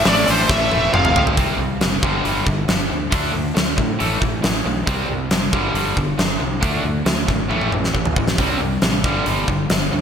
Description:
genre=hard rock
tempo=137 BPM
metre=4/4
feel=straight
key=unclear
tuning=A4 = 441 Hz
part: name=bluesy overdriven lead guitar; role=melody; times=0.0-1.2 s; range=C5 to F5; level=-20 LUFS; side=equal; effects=distortion, ping-pong delay
part: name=overdriven electric guitar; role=riff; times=0.0-10.0 s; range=F2 to D4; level=-21 LUFS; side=equal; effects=none
part: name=fuzz fingered electric bass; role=bass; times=0.0-10.0 s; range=E1 to A2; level=-24 LUFS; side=equal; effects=overdrive
part: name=huge arena drum kit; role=drums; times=0.1-9.8 s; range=hi-hat, kick drum, snare drum, toms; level=-20 LUFS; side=equal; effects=gated reverb
room=moderate lush hall reverb, RT60 1.9 s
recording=bright 1980s-style digital production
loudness=-16 LUFS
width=side -7 dB against mid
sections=0.0-1.4 A section; 1.4-10.0 B section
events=drum fill 0.5-1.4, 7.5-8.4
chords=0.0 A5; 0.9 F5; 1.4 C5; 2.0 G5; 3.1 D5; 4.0 A5; 4.9 C5; 5.5 G5; 6.6 D5; 7.5 A5; 8.4 C5; 9.0 G5

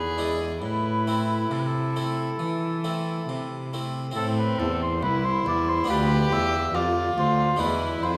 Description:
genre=classical, baroque-style sonata movement with continuo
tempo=69 BPM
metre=4/4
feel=straight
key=A minor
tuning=A4 = 440 Hz
part: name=warm oboe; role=melody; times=0.0-8.2 s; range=A4 to E5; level=-31 LUFS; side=equal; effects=none
part: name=warm violin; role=second line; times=0.0-8.2 s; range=C4 to G#4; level=-31 LUFS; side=equal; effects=none
part: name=harpsichord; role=accompaniment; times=0.0-8.2 s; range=C2 to F4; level=-33 LUFS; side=equal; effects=none
part: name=warm cello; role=bass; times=0.0-8.2 s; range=C2 to E3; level=-30 LUFS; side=equal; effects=none
room=wet recital hall reverb, RT60 1.7 s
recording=none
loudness=-25 LUFS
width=mono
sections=0.0-4.2 A section; 4.2-8.2 B section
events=none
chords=0.0 E7; 0.6 Am; 5.9 Bdim/D; 7.6 E7

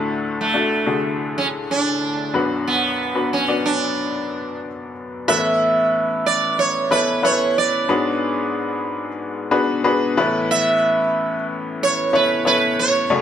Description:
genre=pop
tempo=92 BPM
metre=4/4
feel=straight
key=A major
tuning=A4 = 439 Hz
part: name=bright upright piano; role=accompaniment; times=0.0-13.2 s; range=B1 to A5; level=-21 LUFS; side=left 3 dB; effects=none
part: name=sitar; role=melody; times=0.4-13.2 s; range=A3 to E5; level=-19 LUFS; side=right 3 dB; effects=none
room=moderate large studio reverb, RT60 0.8 s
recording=none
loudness=-17 LUFS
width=side -9 dB against mid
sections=0.0-5.3 A section; 5.3-13.2 B section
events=none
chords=0.0 D; 2.3 Bm; 5.3 Aadd9; 7.9 G#m7b5; 10.2 Aadd9

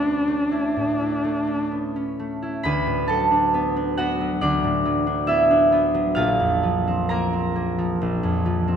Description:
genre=classical, impressionist duo for viola and harp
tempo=62-69 BPM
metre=4/4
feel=rubato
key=unclear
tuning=A4 = 442 Hz
part: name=warm viola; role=melody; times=0.0-1.7 s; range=D4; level=-23 LUFS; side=left 1 dB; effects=none
part: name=concert harp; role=accompaniment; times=0.0-8.8 s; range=Bb1 to B5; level=-20 LUFS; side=right 1 dB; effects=none
room=wet scoring stage reverb, RT60 1.6 s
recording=none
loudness=-19 LUFS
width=side -8 dB against mid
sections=0.0-2.6 A section; 2.6-8.8 B section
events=none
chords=0.0 Dsus2; 2.6 D6; 6.2 Bbadd9

